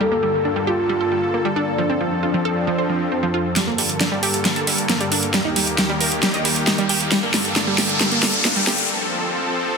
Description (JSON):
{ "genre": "uplifting trance", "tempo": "135 BPM", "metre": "4/4", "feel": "straight", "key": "G minor", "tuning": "A4 = 441 Hz", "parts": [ { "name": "warm velvety synth lead", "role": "second line", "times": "0.0-3.5 s", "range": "D4 to A4", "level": "-22 LUFS", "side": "left 1 dB", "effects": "chorus, ping-pong delay" }, { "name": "supersaw pad", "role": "sustained chords", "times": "0.0-9.8 s", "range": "Eb2 to A4", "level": "-24 LUFS", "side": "left 1 dB", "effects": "none" }, { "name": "wide unison pluck", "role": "arpeggios", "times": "0.0-8.8 s", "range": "F3 to Eb5", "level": "-24 LUFS", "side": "right 3 dB", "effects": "vintage 12-bit sampler grit, dub echo" }, { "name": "big-room dance drum kit", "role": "drums", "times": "3.6-8.9 s", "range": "hi-hat, snare drum", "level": "-20 LUFS", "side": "equal", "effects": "none" }, { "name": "riser", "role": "sound effects", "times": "5.9-8.9 s", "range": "none", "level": "-25 LUFS", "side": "left 2 dB", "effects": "none" } ], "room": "light reverb, digital ambience", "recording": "dense, heavily limited modern master, high-pass filter", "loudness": "-17 LUFS", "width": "side -5 dB against mid", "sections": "0.0-3.6 A section; 3.6-9.8 B section", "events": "build-up 3.6-9.8; drum fill 3.6-8.9; riser 5.9-8.9; break 8.9-9.8", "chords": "0.0 Gmadd9; 1.8 F; 3.6 Gmadd9; 5.3 Eb; 7.1 Gmadd9; 8.9 F", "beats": "| 0.01 0.45 0.90 1.34 | 1.78 2.23 2.67 3.12 | 3.56 4.01 4.45 4.89 | 5.34 5.78 6.23 6.67 | 7.12 7.56 8.01 8.45 | 8.89 9.34" }